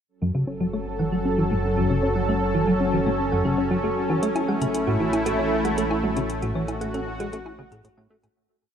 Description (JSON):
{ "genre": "ambient, sequencer-driven space music", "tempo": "116 BPM", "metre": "4/4", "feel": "straight", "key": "F# minor", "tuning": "A4 = 439 Hz", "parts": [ { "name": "lush unison pad", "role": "sustained chords", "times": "0.5-8.3 s", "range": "F#3 to A4", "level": "-24 LUFS", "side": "equal", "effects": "chorus" }, { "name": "analog drone", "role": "bass", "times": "0.6-8.3 s", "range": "F#1 to A1", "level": "-31 LUFS", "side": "equal", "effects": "chorus, tube saturation" }, { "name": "thumb-piano-like synth pluck", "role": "arpeggios", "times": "0.2-8.2 s", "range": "F#4 to F#5", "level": "-34 LUFS", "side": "moving between left 2 dB and right 5 dB", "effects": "chorus, auto-pan, analog delay" }, { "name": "plucky analog bass", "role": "riff", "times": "0.2-8.3 s", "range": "F#2 to E4", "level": "-26 LUFS", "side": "equal", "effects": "analog chorus, analog delay" }, { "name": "electronic hi-hat and woodblock", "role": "percussion", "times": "4.2-8.3 s", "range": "none", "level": "-36 LUFS", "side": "left 1 dB", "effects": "analog delay" } ], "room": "moderate lush hall reverb, RT60 2.8 s", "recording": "lossy compression artefacts", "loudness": "-21 LUFS", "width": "side -8 dB against mid", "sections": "0.1-8.4 A section", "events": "fade-in on synth arpeggio sound 0.1-8.4; filter sweep on analog synth bass 0.1-8.4; fade-out 5.6-8.4", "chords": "0.1 F#m; 4.2 A" }